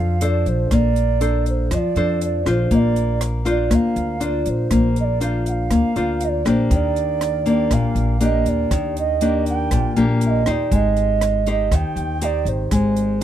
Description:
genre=bossa nova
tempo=120 BPM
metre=4/4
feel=straight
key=unclear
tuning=A4 = 440 Hz
part: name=mellow alto ocarina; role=melody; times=0.0-13.2 s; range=C5 to G5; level=-23 LUFS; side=right 8 dB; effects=none
part: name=nylon-string guitar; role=accompaniment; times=0.0-13.2 s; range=Bb2 to C5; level=-20 LUFS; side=left 3 dB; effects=none
part: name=upright bass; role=bass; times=0.0-13.2 s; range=Ab1 to F2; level=-22 LUFS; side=equal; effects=none
part: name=compact cocktail drum kit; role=drums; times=0.2-13.2 s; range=hi-hat, kick drum, rim click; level=-26 LUFS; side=equal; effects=none
room=light reverb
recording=close, detailed microphones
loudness=-17 LUFS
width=side -11 dB against mid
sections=0.0-13.2 A section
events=none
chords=0.0 Bbmaj9; 2.7 Gm7/Bb (rootless); 6.7 Ebmaj7; 10.7 Abmaj7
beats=0.21 | 0.71 1.21 1.71 2.21 | 2.71 3.21 3.71 4.21 | 4.71 5.21 5.71 6.21 | 6.71 7.21 7.71 8.21 | 8.71 9.21 9.71 10.21 | 10.71 11.21 11.71 12.21 | 12.71 13.21

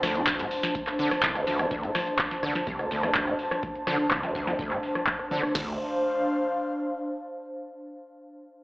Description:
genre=acid house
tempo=125 BPM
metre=4/4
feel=straight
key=D minor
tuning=A4 = 440 Hz
part: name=overdriven acid bass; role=riff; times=0.0-5.8 s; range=C2 to D3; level=-31 LUFS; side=equal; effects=distortion, ensemble chorus, tape echo
part: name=booming analog drum machine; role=drums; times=0.0-5.5 s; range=handclaps, hi-hat, rim click, snare drum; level=-28 LUFS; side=equal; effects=low-pass filter on hats, low-pass filter on snare
part: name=airy breathy pad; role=texture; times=0.0-7.4 s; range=D4 to A5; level=-29 LUFS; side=equal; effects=chorus, sidechain pumping
part: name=booming analog drum machine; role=drums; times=0.3-5.7 s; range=crash cymbal, kick drum, snare drum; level=-36 LUFS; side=equal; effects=none
part: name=warm sub bass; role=bass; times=5.5-5.8 s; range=D2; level=-48 LUFS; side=equal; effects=none
room=wet digital room reverb, RT60 1.1 s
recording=played on a big sound system in a bare room, large studio reverb, AM radio sound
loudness=-25 LUFS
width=side -23 dB against mid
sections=0.0-5.5 A section; 5.5-7.5 B section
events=filter sweep on drum 0.0-5.5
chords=0.0 D7(no3); 5.5 Dm7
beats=0.27 0.75 1.23 | 1.71 2.19 2.67 3.15 | 3.63 4.11 4.59 5.07 | 5.55 6.03 6.51 6.99

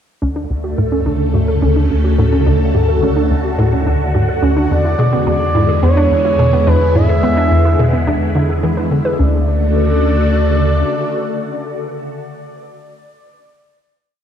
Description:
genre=ambient, sequencer-driven space music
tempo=107 BPM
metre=4/4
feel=straight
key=D lydian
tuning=A4 = 443 Hz
part: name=phased string machine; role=sustained chords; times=0.2-12.2 s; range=C#3 to A4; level=-18 LUFS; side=left 1 dB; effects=ensemble chorus, phaser
part: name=warbly dusty pluck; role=arpeggios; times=0.2-9.5 s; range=B3 to B4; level=-22 LUFS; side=moving between left 1 dB and right 5 dB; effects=chorus, auto-pan, tape echo
part: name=tight sequencer bass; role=riff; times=0.2-9.5 s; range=D2 to E3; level=-17 LUFS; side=equal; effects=ensemble chorus, tape echo
part: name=warm sub bass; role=bass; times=0.2-10.8 s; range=D2 to E2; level=-17 LUFS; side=equal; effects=tube saturation
part: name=expressive portamento lead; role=melody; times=4.7-12.2 s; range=B4 to E5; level=-20 LUFS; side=right 1 dB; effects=chorus, tape echo
room=wet concert hall reverb, RT60 2.0 s, digital ambience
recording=none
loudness=-12 LUFS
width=side -9 dB against mid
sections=0.2-9.2 A section; 9.2-11.4 final chord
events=none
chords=0.2 Dmaj7; 4.7 E7; 9.2 Dmaj7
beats=| 0.22 0.78 1.34 1.90 | 2.46 3.02 3.58 4.15 | 4.71 5.27 5.83 6.39 | 6.95 7.51 8.07 8.63 | 9.19 9.75 10.31 10.88

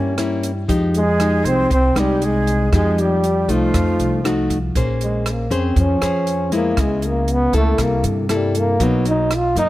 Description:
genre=bossa nova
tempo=118 BPM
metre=4/4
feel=straight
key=F minor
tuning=A4 = 439 Hz
part: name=breathy trombone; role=melody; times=0.0-9.7 s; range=D3 to F4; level=-20 LUFS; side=right 1 dB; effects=none
part: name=breathy jazz flute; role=second line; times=0.0-4.5 s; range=F4 to Db5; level=-28 LUFS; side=right 3 dB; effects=none
part: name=nylon-string guitar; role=accompaniment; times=0.0-9.7 s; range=B2 to C5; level=-20 LUFS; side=left 2 dB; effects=none
part: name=upright bass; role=bass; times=0.0-9.7 s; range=Bb1 to G2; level=-21 LUFS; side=equal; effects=none
part: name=compact cocktail drum kit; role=drums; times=0.2-9.7 s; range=hi-hat, kick drum, rim click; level=-25 LUFS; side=right 1 dB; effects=none
room=light reverb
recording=none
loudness=-15 LUFS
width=side -16 dB against mid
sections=0.0-4.8 A section; 4.8-9.7 B section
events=trombone solo 4.8-9.7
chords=0.0 C7b9 (rootless); 0.7 Fm9; 3.7 F7b9; 4.8 Bbm9; 6.8 Dbm7; 7.8 C6; 8.8 Bmaj7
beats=0.18 | 0.69 1.20 1.71 2.21 | 2.72 3.23 3.74 4.24 | 4.75 5.26 5.76 6.27 | 6.78 7.29 7.79 8.30 | 8.81 9.31

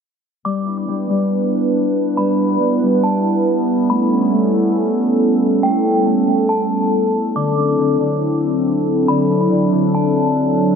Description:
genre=hip hop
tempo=139 BPM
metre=4/4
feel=half-time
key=G major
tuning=A4 = 440 Hz
part: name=Celtic harp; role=arpeggios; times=0.4-10.8 s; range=D3 to E4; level=-22 LUFS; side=left 4 dB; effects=low-pass filter, digital delay
part: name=metallic FM bell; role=melody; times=0.5-10.4 s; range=G5 to D6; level=-24 LUFS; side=right 1 dB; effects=chorus, phaser, low-pass filter, digital delay
part: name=hollow soft pad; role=sustained chords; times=0.5-10.8 s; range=F#3 to B4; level=-15 LUFS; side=right 1 dB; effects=chorus
room=moderate lush hall reverb, RT60 2.8 s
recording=low-pass filter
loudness=-14 LUFS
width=side -6 dB against mid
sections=0.5-10.8 A section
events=filter sweep 0.5-10.8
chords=0.5 G6; 3.9 A9; 7.4 D9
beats=| 0.45 0.88 1.31 1.75 | 2.18 2.61 3.04 3.47 | 3.90 4.33 4.77 5.20 | 5.63 6.06 6.49 6.92 | 7.36 7.79 8.22 8.65 | 9.08 9.52 9.95 10.38

